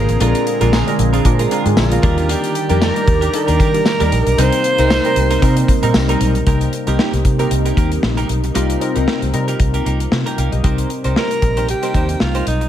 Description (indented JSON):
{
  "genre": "1980s-style pop",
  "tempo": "115 BPM",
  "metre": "4/4",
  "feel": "swing 55% on 16ths",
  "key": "C minor",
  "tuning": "A4 = 440 Hz",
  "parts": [
    { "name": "clear alto saxophone", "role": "melody", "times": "0.0-6.0, 11.2-12.7 s", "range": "Eb4 to C5", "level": "-20 LUFS", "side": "right 2 dB", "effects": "tape echo" },
    { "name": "warm analog keys", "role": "accompaniment", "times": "0.0-12.7 s", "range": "Bb2 to G5", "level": "-20 LUFS", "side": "equal", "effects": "chorus" },
    { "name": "phased analog pad", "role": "sustained chords", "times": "0.0-10.6 s", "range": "C3 to D5", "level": "-23 LUFS", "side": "equal", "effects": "phaser, chorus" },
    { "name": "vintage muted fingered electric bass", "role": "bass", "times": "0.0-12.7 s", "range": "A1 to Eb3", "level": "-18 LUFS", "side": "equal", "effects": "none" },
    { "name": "direct-recorded clean electric guitar", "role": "riff", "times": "0.1-12.7 s", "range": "G3 to C5", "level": "-25 LUFS", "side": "right 4 dB", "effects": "lush chorus" },
    { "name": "modern studio drum kit", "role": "drums", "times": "0.1-12.7 s", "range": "hi-hat, kick drum, snare drum, tambourine", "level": "-19 LUFS", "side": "left 1 dB", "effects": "none" }
  ],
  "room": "light reverb, small room ambience",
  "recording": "none",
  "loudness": "-13 LUFS",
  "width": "side -10 dB against mid",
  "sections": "0.0-6.5 A section; 6.5-10.6 B section; 10.6-12.7 C section",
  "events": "none",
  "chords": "0.0 Bb7; 2.0 Ebmaj7; 4.4 Cm7",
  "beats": "| 0.21 0.73 1.25 1.77 | 2.29 2.82 3.34 3.86 | 4.38 4.90 5.42 5.95 | 6.47 6.99 7.51 8.03 | 8.55 9.08 9.60 10.12 | 10.64 11.16 11.69 12.21"
}